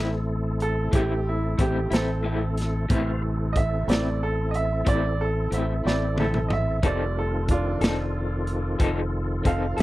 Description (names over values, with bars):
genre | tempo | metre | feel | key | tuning
slow blues | 61 BPM (dotted quarters) | 12/8 | straight | A minor | A4 = 436 Hz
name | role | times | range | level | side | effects
bright upright piano | accompaniment | 0.0-9.8 s | C3 to F5 | -29 LUFS | right 3 dB | none
electric guitar through a small old amp | accompaniment | 0.0-9.8 s | A2 to A4 | -29 LUFS | left 3 dB | tremolo
tonewheel organ | sustained chords | 0.0-9.8 s | Eb3 to F5 | -31 LUFS | left 1 dB | chorus vibrato, fast rotary speaker
fingered electric bass | bass | 0.0-9.8 s | F1 to A1 | -27 LUFS | equal | none
crunchy breakbeat drum kit | drums | 0.6-9.8 s | hi-hat, kick drum, snare drum, toms | -24 LUFS | equal | none
room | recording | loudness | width
little or no reverb | dry, close 1970s-style studio recording | -22 LUFS | side -17 dB against mid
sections
0.0-9.8 A section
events
upright piano solo 0.0-9.8; drum fill 5.9-6.8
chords
0.0 Am; 6.8 F7